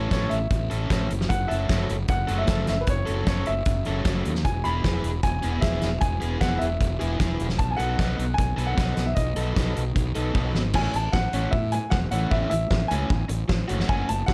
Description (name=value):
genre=indie rock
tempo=152 BPM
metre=4/4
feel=straight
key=unclear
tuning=A4 = 439 Hz
part: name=clear upright piano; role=melody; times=0.0-14.3 s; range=B4 to B5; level=-32 LUFS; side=equal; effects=tape echo
part: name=overdriven electric guitar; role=riff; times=0.0-14.3 s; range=E3 to A4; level=-32 LUFS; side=equal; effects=none
part: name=fuzz fingered electric bass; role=bass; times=0.0-14.3 s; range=E1 to A2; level=-29 LUFS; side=equal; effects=overdrive
part: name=loose indie drum kit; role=drums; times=0.1-14.3 s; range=crash cymbal, hi-hat, kick drum, snare drum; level=-28 LUFS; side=equal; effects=none
room=little or no reverb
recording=dark, warm production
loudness=-25 LUFS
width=mono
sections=0.0-10.7 A section; 10.7-14.3 B section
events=drum fill 10.4-10.7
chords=0.0 A; 1.1 F#m7; 4.4 E; 7.6 B7; 10.7 Amaj7; 13.7 F#m